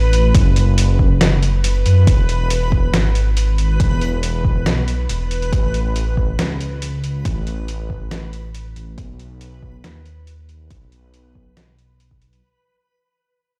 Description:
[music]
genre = deep dubstep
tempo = 139 BPM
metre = 4/4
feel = half-time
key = unclear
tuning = A4 = 440 Hz
[part]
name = dark detuned saw bass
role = bass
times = 0.0-12.4 s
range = E1 to F#2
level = -20 LUFS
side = equal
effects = tube saturation
[part]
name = backwards swelling texture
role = texture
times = 0.0-12.4 s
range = B4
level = -30 LUFS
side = equal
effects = built-in reverb
[part]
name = trip hop sampler-style drum kit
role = drums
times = 0.1-12.4 s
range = hi-hat, snare drum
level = -25 LUFS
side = equal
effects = studio reverb
[part]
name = electronic kick drum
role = drums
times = 0.3-12.2 s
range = none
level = -18 LUFS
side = equal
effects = overdrive, studio reverb
[sound]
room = digital ambience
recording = played on a big sound system in a bare room, stone room reverb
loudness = -17 LUFS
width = mono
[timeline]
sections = 0.0-12.4 A section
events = fade-out 0.0-12.4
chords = 0.0 F#m; 2.1 E; 5.5 A; 9.0 B

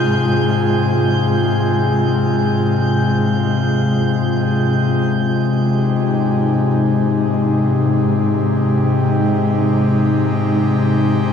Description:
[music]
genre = ambient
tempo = free time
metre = none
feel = none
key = Ab major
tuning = A4 = 440 Hz
[part]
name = airy breathy pad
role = sustained chords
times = 0.0-11.3 s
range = C3 to Ab4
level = -15 LUFS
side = left 2 dB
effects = chorus
[part]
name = dark studio cello section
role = bass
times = 0.0-11.3 s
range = Ab2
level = -23 LUFS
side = equal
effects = none
[part]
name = drifting glass-harmonics texture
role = texture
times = 0.0-5.2 s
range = G6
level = -28 LUFS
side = right 2 dB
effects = chorus, built-in reverb, shimmer reverb
[sound]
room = wet cathedral reverb, RT60 6.5 s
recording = none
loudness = -14 LUFS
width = side -7 dB against mid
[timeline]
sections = 0.0-5.1 A section; 5.1-11.3 B section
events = none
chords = 0.0 Fm/Ab; 5.1 Abmaj7

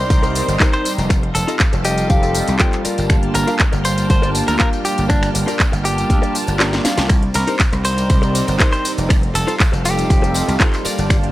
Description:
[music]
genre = nu-disco, nu disco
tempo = 120 BPM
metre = 4/4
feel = straight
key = unclear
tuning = A4 = 439 Hz
[part]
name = direct-recorded clean electric guitar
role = melody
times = 0.0-10.6 s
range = D4 to C5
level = -23 LUFS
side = equal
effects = vintage 12-bit sampler grit, tape echo
[part]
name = warm analog pad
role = accompaniment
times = 0.0-11.3 s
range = G3 to A5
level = -23 LUFS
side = right 1 dB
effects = chorus, sidechain pumping
[part]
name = string machine, full ensemble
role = sustained chords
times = 0.0-11.3 s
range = Bb3 to F6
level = -29 LUFS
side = equal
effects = ensemble chorus, sidechain pumping
[part]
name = gritty slap bass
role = bass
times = 0.0-11.3 s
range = F1 to D2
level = -20 LUFS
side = equal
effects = overdrive
[part]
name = electronic kick drum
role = drums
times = 0.1-11.2 s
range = none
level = -15 LUFS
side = equal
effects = none
[part]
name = house drum kit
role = drums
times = 0.1-11.3 s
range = finger snaps, handclaps, hi-hat, ride cymbal, snare drum, tambourine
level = -22 LUFS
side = equal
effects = none
[part]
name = tambourine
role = percussion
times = 0.1-11.2 s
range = none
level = -32 LUFS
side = left 1 dB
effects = none
[part]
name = direct-recorded clean electric guitar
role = riff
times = 0.2-11.3 s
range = Eb4 to G5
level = -25 LUFS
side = left 4 dB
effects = lush chorus
[sound]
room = little or no reverb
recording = dry, gritty hardware recording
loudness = -14 LUFS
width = side -16 dB against mid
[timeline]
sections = 0.0-11.3 A section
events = clean electric guitar fill 1.6-3.1, 6.4-7.1; kick drops out 6.6-7.1; drum fill 6.6-7.1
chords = 0.0 Cm7; 1.1 F7; 2.9 Gm7; 7.1 Cm7; 9.1 F7

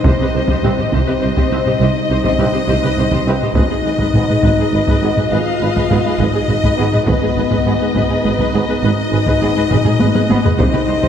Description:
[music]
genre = cinematic, epic orchestral film score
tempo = 68 BPM (dotted quarters)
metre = 12/8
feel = straight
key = unclear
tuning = A4 = 441 Hz
[part]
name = rich symphonic violin section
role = second line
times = 0.0-11.1 s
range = Cb5 to F5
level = -24 LUFS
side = left 3 dB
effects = none
[part]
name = dark French horn section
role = sustained chords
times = 0.0-11.1 s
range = Cb4 to F4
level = -21 LUFS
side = left 4 dB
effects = none
[part]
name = dark woodwind section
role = sustained chords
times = 0.0-11.1 s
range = G3 to Eb5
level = -26 LUFS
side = left 1 dB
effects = none
[part]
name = dark symphonic cello section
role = bass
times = 0.0-11.1 s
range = Ab2 to C3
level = -22 LUFS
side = right 2 dB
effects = none
[part]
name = mellow tuba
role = bass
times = 0.0-10.9 s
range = Ab1 to C2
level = -22 LUFS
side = right 3 dB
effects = none
[part]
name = rich symphonic double bass section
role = bass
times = 0.0-10.9 s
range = Ab1 to C2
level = -23 LUFS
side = right 3 dB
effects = none
[part]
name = taiko ensemble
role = drums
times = 0.0-11.1 s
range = none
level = -18 LUFS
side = equal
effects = none
[part]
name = rich studio violin section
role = melody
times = 0.1-11.1 s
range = Eb5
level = -25 LUFS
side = left 3 dB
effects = none
[part]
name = warm symphonic viola section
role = accompaniment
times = 0.1-11.1 s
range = G4 to C5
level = -24 LUFS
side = equal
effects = none
[part]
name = bright trombone section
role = sustained chords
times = 0.6-10.4 s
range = G2 to C4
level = -28 LUFS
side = right 3 dB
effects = none
[sound]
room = wet concert hall reverb, RT60 2.5 s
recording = none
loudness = -13 LUFS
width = side -8 dB against mid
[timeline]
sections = 0.0-11.1 A section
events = drum fill 9.7-10.6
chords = 0.0 Cm; 3.6 Abm; 10.6 Cm

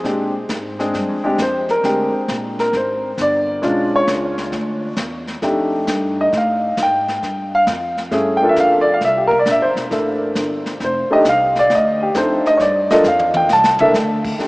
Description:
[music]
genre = jazz piano trio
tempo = 134 BPM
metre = 4/4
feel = swing 68% on 8ths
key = unclear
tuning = A4 = 440 Hz
[part]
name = warm grand piano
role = melody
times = 0.0-14.5 s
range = Ab3 to A5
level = -15 LUFS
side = equal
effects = none
[part]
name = upright bass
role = bass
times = 0.0-14.5 s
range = E1 to Bb2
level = -26 LUFS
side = equal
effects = none
[part]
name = jazz brush drum kit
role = drums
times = 0.0-14.5 s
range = brushed snare drum, crash cymbal, hi-hat, kick drum, snare drum, toms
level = -28 LUFS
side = equal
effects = none
[sound]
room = wet cathedral reverb, RT60 5.0 s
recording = in a vast, echoing space, small speaker sound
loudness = -14 LUFS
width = side -22 dB against mid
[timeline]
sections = 0.0-14.4 A section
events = grand piano solo 0.0-14.5; drum fill 13.0-13.9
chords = 0.0 Bb13; 3.6 Bdim7; 5.4 F13; 7.2 Gm7; 9.0 C13; 10.8 F13; 12.6 G7(no3); 13.5 C69

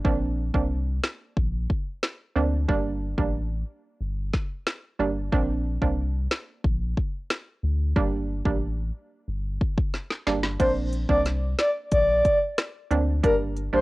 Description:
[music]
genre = dancehall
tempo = 91 BPM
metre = 4/4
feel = straight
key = Bb major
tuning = A4 = 439 Hz
[part]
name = hollow square pluck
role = accompaniment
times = 0.0-13.8 s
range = G3 to D4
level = -27 LUFS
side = right 4 dB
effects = chorus, sidechain pumping, cassette tape
[part]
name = round analog bass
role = bass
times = 0.0-13.8 s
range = G1 to D2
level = -27 LUFS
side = equal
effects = none
[part]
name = afro-pop drum kit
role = drums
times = 0.0-13.7 s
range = crash cymbal, hi-hat, kick drum, rim click, snare drum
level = -26 LUFS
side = equal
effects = cassette tape
[part]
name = breathy flute-like synth lead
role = melody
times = 10.6-13.8 s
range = Bb4 to D5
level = -22 LUFS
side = equal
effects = chorus, cassette tape
[sound]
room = light reverb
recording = home recording on cassette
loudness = -23 LUFS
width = side -20 dB against mid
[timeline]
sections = 0.0-10.6 A section; 10.6-13.8 B section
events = drum fill 9.9-10.6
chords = 0.1 Bbadd9; 2.7 Gm; 5.3 Bbadd9; 8.0 Gm; 10.6 Bbadd9; 13.2 Gm

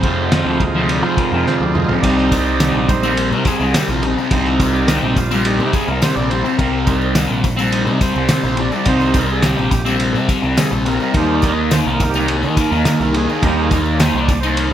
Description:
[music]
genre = psychedelic rock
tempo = 105 BPM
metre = 4/4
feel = straight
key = C minor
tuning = A4 = 440 Hz
[part]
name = overdriven combo organ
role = sustained chords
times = 0.0-14.7 s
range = G3 to F5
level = -21 LUFS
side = right 5 dB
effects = none
[part]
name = fuzz guitar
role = riff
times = 0.0-14.7 s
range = F2 to Eb4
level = -17 LUFS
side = left 1 dB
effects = distortion, phaser
[part]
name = growling picked electric bass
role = bass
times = 0.0-14.7 s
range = Bb1 to F3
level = -22 LUFS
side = equal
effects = overdrive
[part]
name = cloth-damped thuddy drum kit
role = drums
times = 0.0-14.7 s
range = kick drum, ride cymbal, snare drum, splash cymbal, toms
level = -20 LUFS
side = equal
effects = none
[part]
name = tambourine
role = percussion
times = 2.0-14.6 s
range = none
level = -35 LUFS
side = left 10 dB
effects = none
[sound]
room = light reverb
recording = none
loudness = -14 LUFS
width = side -10 dB against mid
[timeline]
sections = 0.0-14.7 A section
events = transistor combo organ solo 0.0-14.7; drum fill 1.5-2.0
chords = 0.0 Fm; 2.0 Cm; 11.2 Eb

